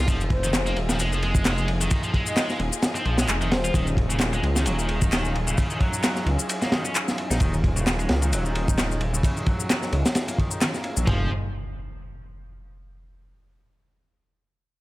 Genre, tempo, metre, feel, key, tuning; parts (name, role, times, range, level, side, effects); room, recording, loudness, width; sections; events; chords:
breakbeat, breaks; 131 BPM; 4/4; swing 56% on 16ths; F phrygian; A4 = 440 Hz
rich symphonic string section; sustained chords; 0.0-11.3 s; Gb3 to Ab4; -33 LUFS; left 1 dB; sidechain pumping, low-pass filter
scooped high-gain guitar; riff; 0.0-11.3 s; Db3 to F4; -31 LUFS; equal; distortion, low-pass filter, dub echo
dark detuned saw bass; bass; 0.0-11.3 s; Eb1 to Db2; -25 LUFS; equal
downlifter and impact; sound effects; 0.0-0.1, 11.3-12.9 s; -38 LUFS; equal
crunchy breakbeat drum kit; drums; 0.1-11.2 s; kick drum, ride cymbal, snare drum, toms; -24 LUFS; equal
electronic shaker and handclaps; drums; 0.1-11.1 s; -30 LUFS; left 2 dB
breathy flute-like synth lead; melody; 0.3-3.7 s; C5 to Eb5; -33 LUFS; left 2 dB; chorus, small speaker sound, dub echo
studio reverb; -21 LUFS; side -18 dB against mid
0.0-11.1 A section; 11.1-12.9 B section
filter sweep on distorted electric guitar 0.0-11.1; filter sweep on string section 0.0-11.1
0.0 Fm7; 3.7 Ebm11; 11.1 Fm11